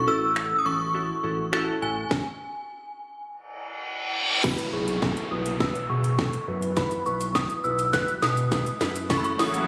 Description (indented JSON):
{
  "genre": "dance-pop",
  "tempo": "103 BPM",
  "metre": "4/4",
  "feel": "straight",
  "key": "unclear",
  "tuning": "A4 = 440 Hz",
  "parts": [
    { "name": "synth chime", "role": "melody", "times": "0.0-9.7 s", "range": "G#5 to F#6", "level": "-31 LUFS", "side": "equal", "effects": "ensemble chorus, phaser, low-pass filter, delay" },
    { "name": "round analog bass", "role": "bass", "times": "0.0-9.7 s", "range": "A1 to B2", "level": "-33 LUFS", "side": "equal", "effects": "sidechain pumping" },
    { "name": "glassy digital keys", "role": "accompaniment", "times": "0.1-9.6 s", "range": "B3 to B4", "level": "-32 LUFS", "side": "equal", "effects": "chorus, sidechain pumping, low-pass filter" },
    { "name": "house drum kit", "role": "drums", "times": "0.4-9.7 s", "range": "crash cymbal, finger snaps, hi-hat, kick drum, shaker, snare drum", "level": "-30 LUFS", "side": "equal", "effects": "none" },
    { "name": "reverse cymbal, riser and downlifter", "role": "sound effects", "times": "3.6-9.7 s", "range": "none", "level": "-34 LUFS", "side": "equal", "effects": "none" },
    { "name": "supersaw pad", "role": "sustained chords", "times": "9.1-9.7 s", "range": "C#3 to F#4", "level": "-32 LUFS", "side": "equal", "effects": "sidechain pumping, low-pass filter" },
    { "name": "tambourine", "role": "percussion", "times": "9.1-9.5 s", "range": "none", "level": "-47 LUFS", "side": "equal", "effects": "none" }
  ],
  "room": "light reverb",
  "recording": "recorded on a phone in the room, studio reverb",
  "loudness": "-26 LUFS",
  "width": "mono",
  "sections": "0.0-4.4 A section; 4.4-9.7 B section",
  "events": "stop 2.1-4.4; reverse cymbal 3.6-4.4; build-up 4.4-9.7; drum fill 4.4-9.7; riser 4.4-9.7; filter sweep 4.4-9.7",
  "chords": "0.0 F#m7/A; 2.1 N.C.; 4.4 Bsus4; 9.1 F#m7",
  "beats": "0.36 0.94 1.53 | 2.11 2.69 3.27 3.86 | 4.44 5.02 5.61 6.19 | 6.77 7.35 7.93 8.52 | 9.10"
}